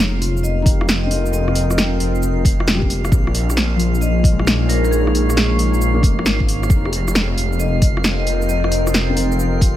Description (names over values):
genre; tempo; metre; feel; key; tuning
future garage; 134 BPM; 4/4; swing 67% on 16ths; F minor; A4 = 440 Hz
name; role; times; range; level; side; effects
felt-muted upright piano; accompaniment; 0.0-9.8 s; F3 to Ab4; -27 LUFS; left 4 dB; vintage 12-bit sampler grit, sidechain pumping, ping-pong delay
deep dark ambient pad; sustained chords; 0.0-9.8 s; Ab3 to G5; -24 LUFS; equal; chorus, built-in reverb, sidechain pumping
swelling detuned saw bass; bass; 0.0-9.8 s; F1 to Bb1; -19 LUFS; equal; sidechain pumping
drifting glass-harmonics texture; texture; 0.0-9.8 s; F5; -30 LUFS; right 7 dB; chorus, built-in reverb
deep house drum kit; drums; 0.2-9.7 s; hi-hat, rim click, shaker, snare drum; -20 LUFS; equal; small room ambience
vibraphone with medium hard mallets; melody; 0.4-8.9 s; Ab4 to Eb5; -26 LUFS; left 3 dB; digital delay
electronic kick drum; drums; 0.7-9.7 s; none; -16 LUFS; equal; small room ambience
room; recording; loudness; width
little or no reverb; vinyl crackle; -14 LUFS; side -12 dB against mid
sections
0.0-9.8 A section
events
none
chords
0.0 Fm9